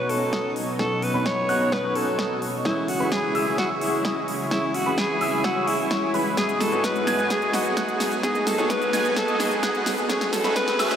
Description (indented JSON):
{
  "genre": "EDM, festival progressive house",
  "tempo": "129 BPM",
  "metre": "4/4",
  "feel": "straight",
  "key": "C# minor",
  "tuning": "A4 = 439 Hz",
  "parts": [
    { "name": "breathy alto saxophone", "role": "melody", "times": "0.0-11.0 s", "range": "E4 to C#5", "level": "-25 LUFS", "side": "equal", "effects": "analog delay" },
    { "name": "felt-muted upright piano", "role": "accompaniment", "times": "0.0-11.0 s", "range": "G#2 to G#4", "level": "-31 LUFS", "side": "left 2 dB", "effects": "analog chorus, sidechain pumping, analog delay" },
    { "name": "lush unison pad", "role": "sustained chords", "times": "0.0-11.0 s", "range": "F#2 to C#5", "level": "-33 LUFS", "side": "equal", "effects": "none" },
    { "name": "dark grand piano", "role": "arpeggios", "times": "0.0-11.0 s", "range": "B5 to G#6", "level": "-30 LUFS", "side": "equal", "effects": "wide subtle chorus, sidechain pumping, low-pass filter, analog delay" },
    { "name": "supersaw chords", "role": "riff", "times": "0.0-11.0 s", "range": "A3 to G#5", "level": "-29 LUFS", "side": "equal", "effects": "sidechain pumping, low-pass filter, analog delay" },
    { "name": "riser", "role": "sound effects", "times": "4.4-11.0 s", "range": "none", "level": "-37 LUFS", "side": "equal", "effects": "none" },
    { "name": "big-room dance drum kit", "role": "drums", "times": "0.1-11.0 s", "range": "hi-hat, shaker, snare drum", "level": "-30 LUFS", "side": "equal", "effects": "overdrive" },
    { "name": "electronic kick drum", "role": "drums", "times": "0.3-10.7 s", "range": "none", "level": "-31 LUFS", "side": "equal", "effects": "overdrive, high-pass filter on kick" }
  ],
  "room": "wet cathedral reverb, RT60 5.4 s",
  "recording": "dreamy mix soaked in reverb, high-pass filter",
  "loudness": "-21 LUFS",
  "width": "side -8 dB against mid",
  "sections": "0.0-11.0 A section",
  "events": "build-up 0.0-11.0; drum fill 0.0-11.0; filter sweep on supersaw synth 0.0-11.0; filter sweep on grand piano 0.0-11.0",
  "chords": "0.0 Badd9; 2.7 C#m; 6.4 G#m7; 10.1 F#madd9"
}